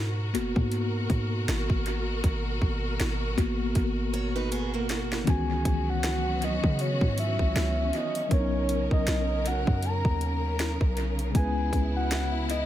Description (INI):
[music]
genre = contemporary R&B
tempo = 79 BPM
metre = 4/4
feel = swing 58% on 16ths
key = unclear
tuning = A4 = 440 Hz
[part]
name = warm symphonic string section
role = sustained chords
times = 0.0-12.7 s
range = B2 to A#4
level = -34 LUFS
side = equal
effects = none
[part]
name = warm 808-style bass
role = bass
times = 0.0-12.7 s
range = F#1 to C#3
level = -29 LUFS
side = equal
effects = none
[part]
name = mellow tine electric piano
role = accompaniment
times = 0.3-12.7 s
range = D#3 to B4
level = -32 LUFS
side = left 4 dB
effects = medium stereo tremolo
[part]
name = trap drum kit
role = drums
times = 0.3-12.7 s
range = hi-hat, kick drum, snare drum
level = -29 LUFS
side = equal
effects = tape echo
[part]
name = picked steel-string acoustic guitar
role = arpeggios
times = 4.1-5.2 s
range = A#3 to C#5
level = -35 LUFS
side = right 9 dB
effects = tape echo
[part]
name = soft octave-layered synth lead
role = melody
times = 5.3-12.7 s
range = C#5 to A#5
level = -32 LUFS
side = equal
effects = chorus, tape echo
[sound]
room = digital ambience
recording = echo-heavy mix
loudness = -25 LUFS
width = side -12 dB against mid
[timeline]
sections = 0.0-5.3 A section; 5.3-12.7 B section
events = tine electric piano solo 0.0-5.3; drum fill 3.8-5.3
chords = 0.0 G#m9; 5.3 C#m11; 8.3 Bmaj9; 11.3 C#m7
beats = 0.72 1.48 | 2.23 2.99 3.75 4.51 | 5.27 6.03 6.79 7.55 | 8.31 9.07 9.83 10.59 | 11.35 12.11